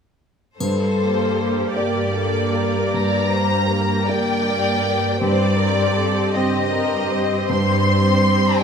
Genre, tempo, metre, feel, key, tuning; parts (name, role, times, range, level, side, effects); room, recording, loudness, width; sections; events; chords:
cinematic, emotional film score for orchestra; 53 BPM (dotted quarters); 6/8; rubato; G minor; A4 = 440 Hz
clear symphonic violin section; melody; 0.6-8.6 s; C5 to C6; -23 LUFS; left 3 dB
warm symphonic violin section; second line; 0.6-8.6 s; G4 to D5; -25 LUFS; left 3 dB
clear baby grand piano; accompaniment; 0.6-8.6 s; G2 to D5; -23 LUFS; equal
rich symphonic cello section; bass; 0.6-8.6 s; G2; -23 LUFS; right 4 dB
triangle; percussion; 0.6-2.1 s; -37 LUFS; left 2 dB
rich symphonic viola section; accompaniment; 1.0-8.6 s; Bb3 to G4; -25 LUFS; equal
moderate scoring stage reverb, RT60 1.6 s; -17 LUFS; side -6 dB against mid
0.6-8.6 A section
0.6 Gm; 5.2 Cm/G